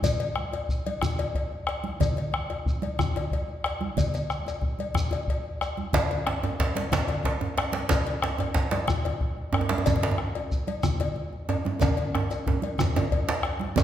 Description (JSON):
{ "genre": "west african traditional, West African drum ensemble", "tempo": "122 BPM (dotted quarters)", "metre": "12/8", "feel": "straight", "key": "none", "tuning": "none", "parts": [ { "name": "bombo", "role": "percussion", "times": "0.0-13.8 s", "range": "none", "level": "-30 LUFS", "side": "left 1 dB", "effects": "none" }, { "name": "congas", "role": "percussion", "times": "0.0-13.8 s", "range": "none", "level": "-34 LUFS", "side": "right 4 dB", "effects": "none" }, { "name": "cowbell", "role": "percussion", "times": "0.0-13.8 s", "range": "none", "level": "-34 LUFS", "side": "left 6 dB", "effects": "none" }, { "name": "djembe", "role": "percussion", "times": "0.0-13.8 s", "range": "none", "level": "-33 LUFS", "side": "left 3 dB", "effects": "none" }, { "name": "shekere", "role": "percussion", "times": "0.0-13.8 s", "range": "none", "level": "-37 LUFS", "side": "right 1 dB", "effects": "none" }, { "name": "djembe", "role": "percussion", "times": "5.9-13.8 s", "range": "none", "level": "-27 LUFS", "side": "right 3 dB", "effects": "none" } ], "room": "wet recital hall reverb, RT60 1.8 s", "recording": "recorded in a church or concert hall", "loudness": "-25 LUFS", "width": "side -11 dB against mid", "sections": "0.0-13.8 A section", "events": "drum fill 11.8-13.8", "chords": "none", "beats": "| 0.04 0.53 1.02 1.52 | 2.01 2.50 2.99 3.48 | 3.97 4.46 4.96 5.45 | 5.94 6.43 6.92 7.41 | 7.90 8.39 8.88 9.37 | 9.86 10.35 10.84 11.32 | 11.81 12.30 12.79 13.28 | 13.77" }